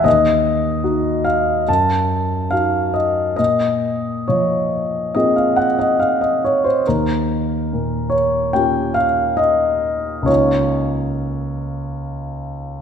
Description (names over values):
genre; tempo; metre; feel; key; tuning
classical, impressionist solo piano; 70 BPM; 4/4; uneven beats, rubato; unclear; A4 = 440 Hz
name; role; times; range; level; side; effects
clear concert grand piano; solo; 0.0-12.8 s; Db2 to A5; -16 LUFS; left 1 dB; none
room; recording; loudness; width
moderate scoring stage reverb, RT60 1.9 s; minimal, uncompressed stereo recording; -16 LUFS; side -7 dB against mid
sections
0.0-12.8 A section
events
none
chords
0.1 Ebm; 1.7 Gbm6; 3.4 Bbm9; 6.8 Eb9; 10.3 Db69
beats
| 0.06 0.84 1.68 2.52 | 3.39 4.27 5.13 5.98 | 6.85 7.69 8.52 9.38 | 10.28 11.23 12.19